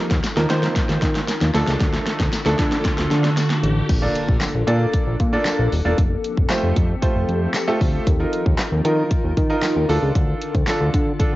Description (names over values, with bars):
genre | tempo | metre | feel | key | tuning
dance-pop | 115 BPM | 4/4 | straight | Bb major | A4 = 440 Hz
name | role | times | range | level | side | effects
clear grand piano | accompaniment | 0.0-11.4 s | F3 to D5 | -24 LUFS | right 2 dB | sidechain pumping, low-pass filter
glassy FM pad | sustained chords | 0.0-11.4 s | D3 to Bb4 | -26 LUFS | left 2 dB | ensemble chorus, built-in reverb, sidechain pumping, low-pass filter
riser and impact | sound effects | 0.1-6.0 s | none | -34 LUFS | equal | none
fat analog bass | bass | 0.1-11.4 s | Eb1 to Eb3 | -21 LUFS | equal | sidechain pumping
pop drum kit | drums | 0.1-11.3 s | crash cymbal, handclaps, hi-hat, kick drum, snare drum | -21 LUFS | equal | cassette tape
tambourine | percussion | 0.2-10.8 s | none | -34 LUFS | left 4 dB | none
room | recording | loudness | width
digital ambience | home recording on cassette, nothing above 7.7 kHz | -17 LUFS | side -17 dB against mid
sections
0.0-3.9 A section; 3.9-11.4 B section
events
build-up 0.0-3.9; drum fill 0.0-3.9; filter sweep 0.0-3.9; drop 3.9-11.4; impact 3.9-6.0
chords
0.0 Ebsus2; 1.5 Dm; 3.9 Bbmaj7; 6.0 Fadd9; 8.1 Ebsus2; 9.9 Dm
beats
0.24 0.76 1.28 | 1.81 2.33 2.85 3.37 | 3.89 4.42 4.94 5.46 | 5.98 6.50 7.02 7.55 | 8.07 8.59 9.11 9.63 | 10.15 10.68 11.20